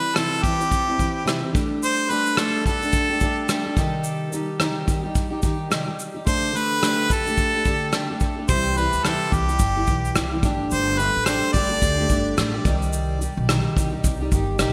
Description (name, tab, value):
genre	acoustic pop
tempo	108 BPM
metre	4/4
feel	swing 60% on 16ths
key	unclear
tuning	A4 = 440 Hz
part	clear harmonica	melody	0.0-12.3 s	G4 to D5	-26 LUFS	equal	delay
part	fingerpicked plugged-in steel-string acoustic guitar	accompaniment	0.0-14.7 s	C3 to G4	-28 LUFS	equal	double-tracked
part	vintage brush drum kit	drums	0.2-14.7 s	kick drum, rim click, shaker	-26 LUFS	equal	gated reverb
part	upright bass	bass	8.5-14.7 s	G1 to D2	-28 LUFS	equal	none
room	moderate lush hall reverb, RT60 1.7 s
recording	bright 1980s-style digital production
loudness	-22 LUFS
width	mono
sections	0.0-14.7 A section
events	none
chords	0.0 C; 1.5 Gsus2; 3.8 Cm; 6.3 Gsus2/D; 8.5 C; 10.4 Gsus2; 12.7 Cm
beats	0.16 0.71 1.27 | 1.82 2.38 2.93 3.49 | 4.04 4.60 5.16 5.71 | 6.27 6.82 7.38 7.93 | 8.49 9.04 9.60 10.15 | 10.71 11.27 11.82 12.38 | 12.93 13.49 14.04 14.60